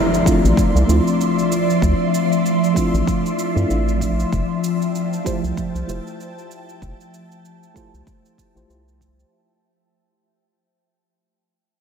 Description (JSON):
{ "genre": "sunset chillout", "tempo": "96 BPM", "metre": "4/4", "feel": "swing 57% on 16ths", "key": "F major", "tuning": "A4 = 439 Hz", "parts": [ { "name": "ethereal airy pad", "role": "sustained chords", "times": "0.0-9.3 s", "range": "F3 to C6", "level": "-20 LUFS", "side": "equal", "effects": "ensemble chorus, built-in reverb, phaser" }, { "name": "impact", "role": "sound effects", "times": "0.0-1.8 s", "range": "none", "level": "-28 LUFS", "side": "equal", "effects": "none" }, { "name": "cabasa", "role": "drums", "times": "0.1-9.3 s", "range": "none", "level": "-33 LUFS", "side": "right 3 dB", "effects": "studio ambience" }, { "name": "mellow FM electric piano", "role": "accompaniment", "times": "0.2-9.3 s", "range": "A3 to C5", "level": "-24 LUFS", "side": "equal", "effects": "chorus, auto-pan, low-pass filter, diffuse ambient delay" }, { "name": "electronic kick drum", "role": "drums", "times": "0.3-9.2 s", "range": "none", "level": "-21 LUFS", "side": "equal", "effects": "studio ambience" }, { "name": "round analog bass", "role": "bass", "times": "0.4-9.2 s", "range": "F1 to G2", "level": "-18 LUFS", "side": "equal", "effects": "none" } ], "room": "wet cathedral reverb, RT60 5.8 s", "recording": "dreamy mix soaked in reverb", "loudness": "-16 LUFS", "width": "side -7 dB against mid", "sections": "0.0-9.3 A section", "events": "fade-out 0.0-9.3; impact 0.0-1.8", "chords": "0.0 Dm9; 4.3 Fmaj9" }